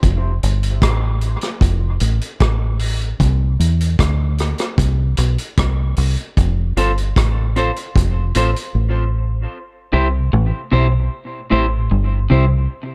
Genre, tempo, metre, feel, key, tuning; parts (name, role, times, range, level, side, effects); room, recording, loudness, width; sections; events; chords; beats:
dub reggae; 76 BPM; 4/4; straight; C major; A4 = 440 Hz
deep dub fingered electric bass; bass; 0.0-12.7 s; F1 to E2; -19 LUFS; equal
vintage drum kit; drums; 0.0-8.7 s; hi-hat, kick drum, rim click; -22 LUFS; equal
clean electric guitar; accompaniment; 6.8-12.4 s; C4 to C5; -25 LUFS; equal; low-pass filter, dub echo
clean electric guitar; riff; 9.9-12.5 s; G2 to C3; -23 LUFS; equal; dub echo
little or no reverb; faint mains hum; -18 LUFS; mono
0.0-9.5 A section; 9.5-12.9 B section
filter sweep on clean electric guitar 0.0-9.5; break 0.0-6.4, 12.7; drums muted 8.7-9.5; part muted 9.5-12.9
0.0 F; 3.2 N.C.; 6.4 F; 9.5 C
| 0.03 0.82 1.61 2.41 | 3.20 3.99 4.79 5.58 | 6.37 7.16 7.95 8.74 | 9.54 10.33 11.12 11.91